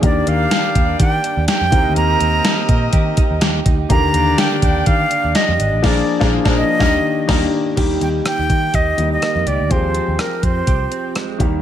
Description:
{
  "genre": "1980s-style pop",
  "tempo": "124 BPM",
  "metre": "4/4",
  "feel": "swing 55% on 16ths",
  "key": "Eb major",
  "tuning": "A4 = 441 Hz",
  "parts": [
    { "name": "breathy bright concert flute", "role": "melody", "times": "0.0-11.2 s", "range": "Bb4 to Bb5", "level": "-20 LUFS", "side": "right 1 dB", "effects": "digital delay" },
    { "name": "warm baby grand piano", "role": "accompaniment", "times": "0.0-11.6 s", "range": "D3 to Ab4", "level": "-21 LUFS", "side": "left 4 dB", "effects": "none" },
    { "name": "direct-recorded clean electric guitar", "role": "riff", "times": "0.0-11.6 s", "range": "Eb3 to G4", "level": "-25 LUFS", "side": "right 9 dB", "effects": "tube saturation, ensemble chorus, digital delay" },
    { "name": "clear horn section", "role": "stabs", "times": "0.0-7.4 s", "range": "F3 to Eb5", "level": "-26 LUFS", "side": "left 2 dB", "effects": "none" },
    { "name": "vintage muted picked electric bass", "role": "bass", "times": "0.0-11.6 s", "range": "Ab1 to Eb3", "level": "-20 LUFS", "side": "equal", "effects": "none" },
    { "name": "gated 80s digital drum machine", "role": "drums", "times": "0.0-11.5 s", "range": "crash cymbal, hi-hat, kick drum, rim click, snare drum", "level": "-18 LUFS", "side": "equal", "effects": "gated reverb, gated reverb snare" }
  ],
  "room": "light reverb, studio reverb",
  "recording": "faint mains hum",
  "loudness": "-14 LUFS",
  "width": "side -10 dB against mid",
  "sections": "0.0-7.8 A section; 7.8-11.6 B section",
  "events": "band accent 5.8-7.8",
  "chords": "0.0 Ebmaj7; 1.7 Cm7; 3.9 Ebmaj7; 5.8 Bb7; 6.8 Ebmaj7; 7.8 Eb; 9.7 Fmadd9/Eb"
}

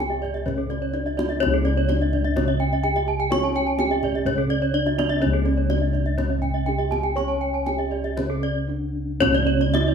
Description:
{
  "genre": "Balinese gamelan",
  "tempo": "113-127 BPM",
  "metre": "4/4",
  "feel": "straight",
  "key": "C# pelog",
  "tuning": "A4 = 436 Hz",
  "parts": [
    { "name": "gamelan-type bronze metallophone", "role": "melody", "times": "0.0-9.9 s", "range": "C#4 to C#5", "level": "-27 LUFS", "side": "right 3 dB", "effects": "none" },
    { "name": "gamelan-type bronze metallophone", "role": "arpeggios", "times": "0.0-9.9 s", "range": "C#5 to C#6", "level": "-26 LUFS", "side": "left 4 dB", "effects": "none" },
    { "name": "gamelan-type bossed gongs", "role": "bass", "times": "0.0-9.9 s", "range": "C#2 to C#5", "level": "-25 LUFS", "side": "left 1 dB", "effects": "none" },
    { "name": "kendang", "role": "percussion", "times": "0.0-9.9 s", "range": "none", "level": "-31 LUFS", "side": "equal", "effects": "none" },
    { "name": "gamelan-type bronze metallophone", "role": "arpeggios", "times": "0.1-9.9 s", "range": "A4-40c to A5-40c", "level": "-29 LUFS", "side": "right 6 dB", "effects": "none" },
    { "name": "gamelan-type bronze metallophone", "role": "accompaniment", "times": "1.4-9.9 s", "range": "C#3 to C#4", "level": "-29 LUFS", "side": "right 4 dB", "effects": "none" }
  ],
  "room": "wet large studio reverb, RT60 1.2 s",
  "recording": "band playing live in one room",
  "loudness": "-20 LUFS",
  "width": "side -7 dB against mid",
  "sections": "0.0-9.2 A section",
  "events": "drum fill 8.7-9.2",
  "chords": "none"
}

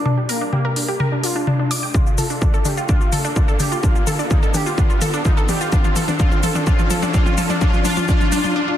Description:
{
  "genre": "melodic techno",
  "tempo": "127 BPM",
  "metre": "4/4",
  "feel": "straight",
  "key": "unclear",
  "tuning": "A4 = 441 Hz",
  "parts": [
    { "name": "resonant sweep polysynth", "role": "melody", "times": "0.0-8.5 s", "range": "Bb3 to G4", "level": "-27 LUFS", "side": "equal", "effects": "chorus, sidechain pumping, digital delay" },
    { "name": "wide unison pluck", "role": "arpeggios", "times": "0.0-8.8 s", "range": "D4 to D6", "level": "-23 LUFS", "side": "equal", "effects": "sidechain pumping, ping-pong delay" },
    { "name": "riser", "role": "sound effects", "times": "0.0-8.6 s", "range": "none", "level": "-28 LUFS", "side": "equal", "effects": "none" },
    { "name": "techno drum kit", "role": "drums", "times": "0.1-8.5 s", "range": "hi-hat, shaker, toms", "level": "-22 LUFS", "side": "left 1 dB", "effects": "overdrive" },
    { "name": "round analog bass", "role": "bass", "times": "0.2-8.5 s", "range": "none", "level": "barely audible", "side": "none", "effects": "none" },
    { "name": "electronic kick drum", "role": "drums", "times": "1.9-8.2 s", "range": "none", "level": "-17 LUFS", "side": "equal", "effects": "overdrive" }
  ],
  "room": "moderate recital hall reverb, RT60 1.5 s",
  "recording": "dense, heavily limited modern master",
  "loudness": "-16 LUFS",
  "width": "side -11 dB against mid",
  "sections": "0.0-8.8 A section",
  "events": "build-up 0.0-8.8; drum fill 0.0-8.6; riser 0.0-8.6; filter sweep on synth pluck 0.0-8.8; filter sweep on analog polysynth 0.0-8.8",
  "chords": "0.1 Gm; 1.9 Dm; 3.8 Ebsus2; 5.7 Bb; 7.6 G5"
}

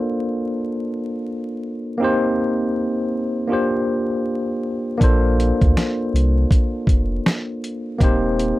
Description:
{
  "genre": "lo-fi hip hop",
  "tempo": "80 BPM",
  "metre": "4/4",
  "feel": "swing 60% on 16ths",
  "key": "Bb major",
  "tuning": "A4 = 444 Hz",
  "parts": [
    { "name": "tine electric piano", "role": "accompaniment", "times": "0.0-8.6 s", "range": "Bb3 to C5", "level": "-20 LUFS", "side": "equal", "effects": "medium stereo tremolo, cassette tape" },
    { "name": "soft dub sub bass", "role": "bass", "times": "5.0-8.5 s", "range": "Eb1 to D2", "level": "-19 LUFS", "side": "equal", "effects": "none" },
    { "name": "dusty soul sampler-style drum kit", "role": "drums", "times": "5.0-8.6 s", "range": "hi-hat, kick drum, snare drum", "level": "-17 LUFS", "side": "equal", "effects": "none" }
  ],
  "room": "little or no reverb",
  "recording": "dark, warm production, vinyl crackle",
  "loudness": "-18 LUFS",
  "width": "side -17 dB against mid",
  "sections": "0.0-8.6 A section",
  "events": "none",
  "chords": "0.0 Bbmaj9; 2.0 Eb6; 3.5 C9sus4; 5.0 Bbmaj9; 8.0 Eb6"
}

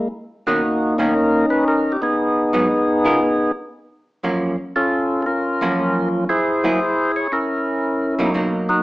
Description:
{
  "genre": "jazz",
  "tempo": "117 BPM",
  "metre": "4/4",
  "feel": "swing 69% on 8ths",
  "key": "unclear",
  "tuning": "A4 = 436 Hz",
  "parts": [
    { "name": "percussive tonewheel organ", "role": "melody", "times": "0.0-8.8 s", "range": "A#3 to C#5", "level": "-17 LUFS", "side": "equal", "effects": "slow rotary speaker" },
    { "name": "archtop guitar, miked and amplified", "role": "accompaniment", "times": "0.5-8.8 s", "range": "F#2 to A#4", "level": "-21 LUFS", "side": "right 1 dB", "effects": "none" }
  ],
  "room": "moderate large studio reverb, RT60 0.9 s",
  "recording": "small speaker sound",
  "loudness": "-17 LUFS",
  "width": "side -18 dB against mid",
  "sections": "0.0-8.8 A section",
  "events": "none",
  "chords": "0.1 Bmaj9; 2.2 G#m7; 3.2 B6; 4.2 F#maj7; 6.3 F#9"
}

